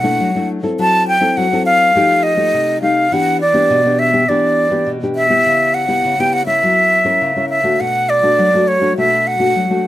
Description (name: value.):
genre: samba.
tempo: 103 BPM.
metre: 4/4.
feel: straight.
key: B minor.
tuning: A4 = 440 Hz.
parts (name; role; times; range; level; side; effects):
breathy concert flute; melody; 0.0-9.9 s; C#5 to A5; -13 LUFS; equal; none.
nylon-string guitar; accompaniment; 0.0-9.9 s; B2 to A#4; -18 LUFS; left 2 dB; none.
room: light reverb.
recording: close, detailed microphones.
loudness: -12 LUFS.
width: side -14 dB against mid.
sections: 0.0-9.9 A section.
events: none.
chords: 0.0 Bm7; 0.8 F#m7b5; 2.0 F9; 3.1 Em7; 5.5 C#m7b5; 6.6 F#7; 7.8 Bm7.